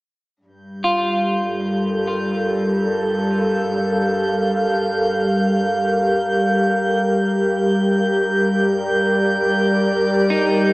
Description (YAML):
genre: ambient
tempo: 73 BPM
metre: 4/4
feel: straight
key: G minor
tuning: A4 = 440 Hz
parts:
  - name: airy breathy pad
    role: sustained chords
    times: 0.7-10.7 s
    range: G3 to F5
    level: -18 LUFS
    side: equal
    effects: chorus
  - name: rich studio cello section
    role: bass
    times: 0.4-10.7 s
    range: G2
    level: -34 LUFS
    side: equal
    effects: none
  - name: analog drone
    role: drone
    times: 1.6-10.7 s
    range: G3 to D5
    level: -30 LUFS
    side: equal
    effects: none
  - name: drifting glass-harmonics texture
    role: texture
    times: 0.8-10.7 s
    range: G6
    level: -26 LUFS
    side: equal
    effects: chorus, built-in reverb
  - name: electric guitar at the edge of break-up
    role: arpeggios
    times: 0.8-4.1, 10.3-10.7 s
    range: Eb4 to F4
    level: -23 LUFS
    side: equal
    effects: wide subtle chorus, analog delay
room: wet lush hall reverb, RT60 2.6 s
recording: dreamy mix soaked in reverb, small speaker sound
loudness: -16 LUFS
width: side -21 dB against mid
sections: 0.4-10.7 A section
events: fade-out on cello section 0.4-10.7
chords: 0.4 Gm9; 7.0 Gm